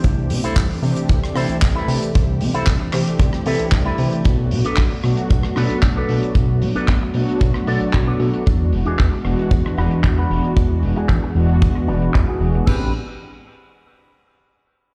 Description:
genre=nu-disco, nu disco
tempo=114 BPM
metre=4/4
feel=straight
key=A dorian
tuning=A4 = 439 Hz
part: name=mellow synth brass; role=accompaniment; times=0.0-12.9 s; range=E3 to G4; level=-25 LUFS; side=equal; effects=chorus, cassette tape, sidechain pumping, delay
part: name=electric guitar with an envelope filter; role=riff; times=0.0-12.9 s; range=C4 to D5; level=-29 LUFS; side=equal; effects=analog chorus, low-pass filter, delay
part: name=fat analog bass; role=bass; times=0.0-12.9 s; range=E1 to C3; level=-22 LUFS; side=equal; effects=sidechain pumping
part: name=damped 70s drum kit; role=drums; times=0.0-12.8 s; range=crash cymbal, handclaps, hi-hat, rim click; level=-31 LUFS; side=equal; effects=low-pass filter on hats, low-pass filter on cymbals, low-pass filter on snare, low-pass filter on room
part: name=kick drum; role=drums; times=0.0-12.8 s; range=none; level=-19 LUFS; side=equal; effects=none
room=light reverb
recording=played on a big sound system in a bare room, stone room reverb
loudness=-18 LUFS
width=mono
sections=0.0-12.7 A section; 12.7-14.8 B section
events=filter sweep on drum 0.0-12.7; filter sweep on analog synth bass 0.0-12.7; filter sweep on clean electric guitar 0.0-12.7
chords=0.0 C6; 4.3 Bm7; 8.5 E9; 12.7 Am11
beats=| 0.04 0.57 1.09 1.62 | 2.15 2.67 3.20 3.73 | 4.25 4.78 5.30 5.83 | 6.36 6.88 7.41 7.94 | 8.46 8.99 9.52 10.04 | 10.57 11.09 11.62 12.15 | 12.67

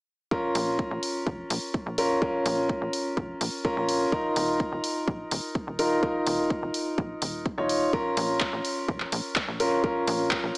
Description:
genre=progressive house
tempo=126 BPM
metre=4/4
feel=straight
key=Bb minor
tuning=A4 = 440 Hz
part: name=warm grand piano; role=stabs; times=0.3-10.6 s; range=Db4 to Db5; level=-26 LUFS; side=equal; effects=sidechain pumping, dub echo
part: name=electronic kick drum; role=drums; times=0.3-10.4 s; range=none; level=-30 LUFS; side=equal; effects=small room reverb
part: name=tight sequencer bass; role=bass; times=0.6-10.5 s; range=Eb1 to Bb1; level=-33 LUFS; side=equal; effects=sidechain pumping
part: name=house drum kit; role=drums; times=0.6-10.6 s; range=handclaps, hi-hat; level=-31 LUFS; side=equal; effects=sidechain pumping on hats, small room reverb
room=light reverb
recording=small speaker sound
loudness=-25 LUFS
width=side -38 dB against mid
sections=0.3-10.6 A section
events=none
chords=0.3 Bbm; 4.1 Ebsus2; 7.9 Bbm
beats=| 0.31 0.79 1.27 1.74 | 2.22 2.69 3.17 3.65 | 4.12 4.60 5.08 5.55 | 6.03 6.50 6.98 7.46 | 7.93 8.41 8.88 9.36 | 9.84 10.31

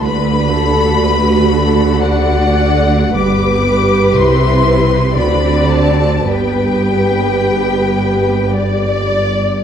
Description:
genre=classical, slow romantic movement for string orchestra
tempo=46-62 BPM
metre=3/4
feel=rubato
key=G major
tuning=A4 = 440 Hz
part: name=rich studio violin section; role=melody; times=0.0-9.6 s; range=D5 to D6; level=-19 LUFS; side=left 6 dB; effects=none
part: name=rich studio violin section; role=second line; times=0.0-9.6 s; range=A4 to D5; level=-18 LUFS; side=left 1 dB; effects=none
part: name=rich studio viola section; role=accompaniment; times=0.0-9.5 s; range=A3 to G4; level=-17 LUFS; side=right 2 dB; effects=none
part: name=clear studio double bass section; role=bass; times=0.0-9.5 s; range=G1 to D2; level=-18 LUFS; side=right 2 dB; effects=none
part: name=rich studio cello section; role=bass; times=0.0-9.5 s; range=G2 to D3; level=-18 LUFS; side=right 1 dB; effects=none
room=wet scoring stage reverb, RT60 1.9 s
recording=dark, warm production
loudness=-11 LUFS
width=side -8 dB against mid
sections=0.0-9.6 A section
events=none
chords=0.0 D; 3.1 G; 4.2 C; 5.2 D7; 6.3 G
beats=| 0.03 1.02 2.04 | 3.15 4.15 5.18 | 6.29 7.42 8.54

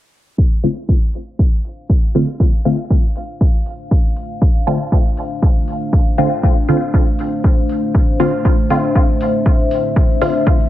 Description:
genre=dub techno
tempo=119 BPM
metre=4/4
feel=swing 55% on 16ths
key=D minor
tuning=A4 = 439 Hz
part: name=dark analog pad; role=sustained chords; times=2.8-10.7 s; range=A3 to F5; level=-21 LUFS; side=left 2 dB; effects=chorus, phaser, sidechain pumping
part: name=electronic kick drum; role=drums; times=0.4-10.6 s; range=none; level=-13 LUFS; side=equal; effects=studio reverb
part: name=filtered dub chord stab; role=stabs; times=0.6-10.3 s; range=D3 to F4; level=-18 LUFS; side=equal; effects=phaser, cassette tape, sidechain pumping, dub echo
part: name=electronic hi-hat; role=drums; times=0.6-10.3 s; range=none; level=-45 LUFS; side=right 1 dB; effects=overdrive, studio reverb
room=light reverb, digital ambience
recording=low-pass filter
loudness=-13 LUFS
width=side -14 dB against mid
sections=0.4-10.7 A section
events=filter sweep on analog synth pad 0.4-10.7; filter sweep 0.4-10.7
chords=0.4 Dm7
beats=| 0.38 0.89 1.39 1.90 | 2.40 2.90 3.41 3.91 | 4.42 4.92 5.42 5.93 | 6.43 6.94 7.44 7.95 | 8.45 8.96 9.46 9.96 | 10.47

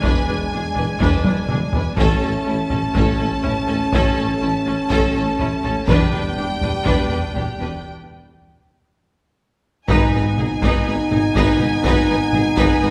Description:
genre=cinematic, epic orchestral film score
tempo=123 BPM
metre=4/4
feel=straight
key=G# minor from 9.9 s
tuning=A4 = 437 Hz
part: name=rich symphonic violin section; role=melody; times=0.0-12.9 s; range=G5 to A5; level=-29 LUFS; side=equal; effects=none
part: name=rich symphonic violin section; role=second line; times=0.0-12.9 s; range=E4 to B4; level=-30 LUFS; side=equal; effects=none
part: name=bright symphonic viola section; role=accompaniment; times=0.0-12.9 s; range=C#4 to D#4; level=-29 LUFS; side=equal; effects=none
part: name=warm French horn section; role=sustained chords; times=0.0-12.9 s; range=G3 to D#4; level=-26 LUFS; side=equal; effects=none
part: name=dark tuba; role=bass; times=0.0-12.9 s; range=E1 to A1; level=-28 LUFS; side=equal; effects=none
part: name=rich symphonic cello section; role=bass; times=0.0-12.9 s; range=E2 to A2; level=-30 LUFS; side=equal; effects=none
part: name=rich symphonic double bass section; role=bass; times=0.0-12.9 s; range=E1 to A1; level=-29 LUFS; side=equal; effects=none
part: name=solo taiko drums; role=drums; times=0.0-12.9 s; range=none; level=-25 LUFS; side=equal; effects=none
part: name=timpani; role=percussion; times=9.9-10.6 s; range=G#2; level=-30 LUFS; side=equal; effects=none
room=wet recital hall reverb, RT60 1.5 s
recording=recorded in a church or concert hall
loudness=-19 LUFS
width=mono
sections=0.0-9.9 A section; 9.9-12.9 B section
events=drum fill 1.2-2.0; break 7.9-9.9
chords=0.0 E7; 2.0 A; 5.9 Em7; 7.9 N.C.; 9.9 G#m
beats=| 0.03 0.52 1.01 1.49 | 1.98 2.46 2.95 3.44 | 3.93 4.41 4.90 5.39 | 5.88 6.38 6.87 7.36 | 7.87 8.37 8.88 9.38 | 9.88 10.37 10.86 11.35 | 11.84 12.32 12.81

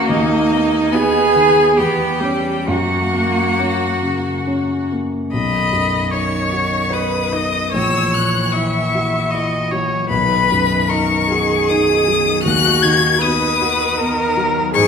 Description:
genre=classical, slow romantic movement for piano quartet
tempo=65-79 BPM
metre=3/4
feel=rubato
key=B major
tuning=A4 = 440 Hz
part: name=rich violin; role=melody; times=0.0-14.9 s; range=D#5 to G#6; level=-20 LUFS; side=left 7 dB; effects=none
part: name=rich cello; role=second line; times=0.0-14.9 s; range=D#3 to G#4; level=-20 LUFS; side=right 2 dB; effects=none
part: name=clear viola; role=accompaniment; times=0.0-14.9 s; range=G3 to E5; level=-20 LUFS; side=right 1 dB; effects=none
part: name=dark baby grand piano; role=accompaniment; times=0.0-14.9 s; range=A#1 to D#5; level=-20 LUFS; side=left 1 dB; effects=none
room=wet recital hall reverb, RT60 1.4 s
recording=heard from further back in the room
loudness=-14 LUFS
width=side -6 dB against mid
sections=0.0-5.3 A section; 5.3-14.9 B section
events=none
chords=0.1 B/D#; 1.8 C#m7b5/E; 2.7 F#; 5.3 B; 7.7 F#7/A#; 10.1 B; 12.4 B/D#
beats=| 0.09 0.93 1.77 | 2.67 3.58 4.47 | 5.32 6.12 6.92 | 7.73 8.54 9.32 | 10.10 10.90 11.68 | 12.44 13.21 13.97 | 14.74

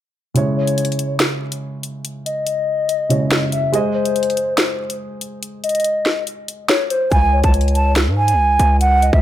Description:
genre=hip hop, drill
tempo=142 BPM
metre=4/4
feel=half-time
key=C# harmonic minor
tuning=A4 = 439 Hz
part: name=dark baby grand piano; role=accompaniment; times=0.3-7.1 s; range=C#3 to D#5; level=-21 LUFS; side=right 1 dB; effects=none
part: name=drill drum kit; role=drums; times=0.4-9.2 s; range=hi-hat, kick drum, snare drum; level=-19 LUFS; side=equal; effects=none
part: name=hollow clarinet-like synth lead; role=second line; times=0.6-9.2 s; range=B#4 to E5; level=-21 LUFS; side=left 4 dB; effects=chorus, digital delay
part: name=breathy mellow silver concert flute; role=melody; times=7.1-9.2 s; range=E5 to A5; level=-16 LUFS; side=right 3 dB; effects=digital delay
part: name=distorted 808-style bass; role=bass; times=7.1-9.2 s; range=C#2 to G#2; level=-16 LUFS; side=equal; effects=distortion
room=light reverb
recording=none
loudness=-15 LUFS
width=side -12 dB against mid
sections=0.4-9.2 A section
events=kick muted 0.4-7.1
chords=0.4 C#m; 3.7 G#; 7.1 C#5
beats=| 0.35 0.78 1.20 1.62 | 2.05 2.47 2.89 3.31 | 3.74 4.16 4.58 5.00 | 5.43 5.85 6.27 6.69 | 7.12 7.54 7.96 8.38 | 8.81

